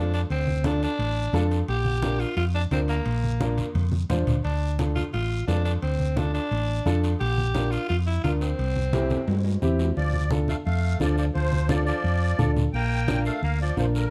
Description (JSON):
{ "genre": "latin, cumbia", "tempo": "174 BPM", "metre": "4/4", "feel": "straight", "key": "D minor", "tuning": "A4 = 440 Hz", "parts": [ { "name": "raspy tenor saxophone", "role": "second line", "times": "0.0-14.1 s", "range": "D3 to G4", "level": "-33 LUFS", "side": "equal", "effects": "none" }, { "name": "warm upright piano", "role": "accompaniment", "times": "0.0-14.0 s", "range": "C4 to C5", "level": "-31 LUFS", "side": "equal", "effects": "none" }, { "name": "hollow-body short-scale fingered electric bass", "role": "bass", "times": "0.0-14.1 s", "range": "A1 to G2", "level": "-27 LUFS", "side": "equal", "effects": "none" }, { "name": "guiro", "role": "percussion", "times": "0.1-14.1 s", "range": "none", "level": "-47 LUFS", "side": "equal", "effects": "none" }, { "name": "timbales", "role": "percussion", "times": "0.1-9.9 s", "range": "none", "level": "-42 LUFS", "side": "equal", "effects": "none" }, { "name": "congas", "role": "percussion", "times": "0.3-13.9 s", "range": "none", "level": "-32 LUFS", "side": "equal", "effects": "none" }, { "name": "musette accordion", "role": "melody", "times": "10.0-14.1 s", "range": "Bb4 to G5", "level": "-33 LUFS", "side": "equal", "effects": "none" } ], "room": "light reverb", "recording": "dark, warm production", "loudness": "-25 LUFS", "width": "mono", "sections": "0.0-10.0 A section; 10.0-14.1 B section", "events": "tenor saxophone solo 0.0-10.0; drum fill 3.8-4.4, 8.9-10.0", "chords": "0.0 Dm; 1.7 Bb; 4.4 Dm; 7.2 Bb; 8.6 C; 10.0 Dm; 12.7 Bb" }